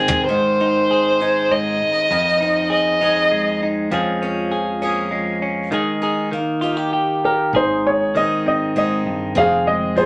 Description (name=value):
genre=folk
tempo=99 BPM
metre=3/4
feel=straight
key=Ab major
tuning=A4 = 440 Hz
part: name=dark violin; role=second line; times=0.0-3.6 s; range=Ab4 to Eb5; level=-19 LUFS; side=equal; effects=none
part: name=direct-recorded clean electric guitar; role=accompaniment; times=0.0-10.1 s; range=F2 to Ab4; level=-23 LUFS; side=equal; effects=none
part: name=picked swing-style acoustic guitar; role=arpeggios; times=0.0-10.1 s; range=Eb3 to Ab4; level=-29 LUFS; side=equal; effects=none
part: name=warm upright piano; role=melody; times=7.2-10.1 s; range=Eb4 to F5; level=-20 LUFS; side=equal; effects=none
part: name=woody fretless electric bass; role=bass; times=7.5-10.1 s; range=F1 to Ab1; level=-32 LUFS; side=equal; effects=none
room=wet club reverb, RT60 0.6 s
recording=none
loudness=-19 LUFS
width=mono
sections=0.3-7.5 A section; 7.5-10.1 B section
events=violin solo 0.3-7.5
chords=0.3 Ab; 2.1 Fm7; 3.9 Bbm7/F; 5.7 Ebsus4; 6.3 Eb; 7.5 Ab; 9.4 Fm7